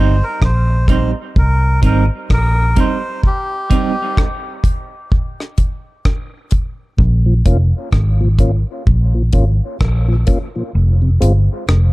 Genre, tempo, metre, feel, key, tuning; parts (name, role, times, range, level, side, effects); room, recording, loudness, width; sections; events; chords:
dub reggae; 64 BPM; 4/4; swing 60% on 16ths; C phrygian; A4 = 438 Hz
melodica; melody; 0.0-4.2 s; G4 to C5; -22 LUFS; equal; dub echo
semi-hollow electric guitar; accompaniment; 0.0-3.9 s; G3 to Eb4; -22 LUFS; right 6 dB; tremolo, dub echo
vintage muted fingered electric bass; bass; 0.0-11.9 s; F1 to C2; -13 LUFS; equal
deep reggae drum kit; drums; 0.4-11.9 s; hi-hat, kick drum, rim click; -15 LUFS; equal
mellow tonewheel organ; accompaniment; 7.3-11.3 s; F2 to F4; -22 LUFS; left 1 dB; chorus vibrato, slow rotary speaker, dub echo
small room ambience; dark, warm production; -13 LUFS; side -20 dB against mid
0.0-11.9 A section
break 0.0-7.0; kick muted 10.7-11.9
0.0 Cm; 7.0 Bbm; 10.7 Fm